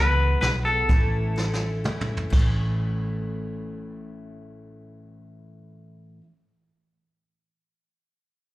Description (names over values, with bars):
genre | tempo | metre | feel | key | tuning
honky-tonk and classic country | 126 BPM | 3/4 | straight | A major | A4 = 440 Hz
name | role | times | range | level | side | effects
twangy electric guitar | melody | 0.0-1.8 s | A4 to B4 | -25 LUFS | left 2 dB | slapback echo
picked steel-string acoustic guitar | accompaniment | 0.0-6.3 s | A2 to F#4 | -34 LUFS | left 1 dB | none
vintage muted fingered electric bass | bass | 0.0-6.2 s | A1 to C#2 | -25 LUFS | equal | none
vintage brush drum kit | drums | 0.4-2.4 s | crash cymbal, hi-hat, kick drum, snare drum, toms | -25 LUFS | equal | none
room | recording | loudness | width
small room ambience | live gig heard through the venue's PA, club ambience | -22 LUFS | side -17 dB against mid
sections
0.0-2.3 A section; 2.3-5.2 B section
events
drum fill 1.4-2.3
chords
0.0 Eadd9; 0.9 A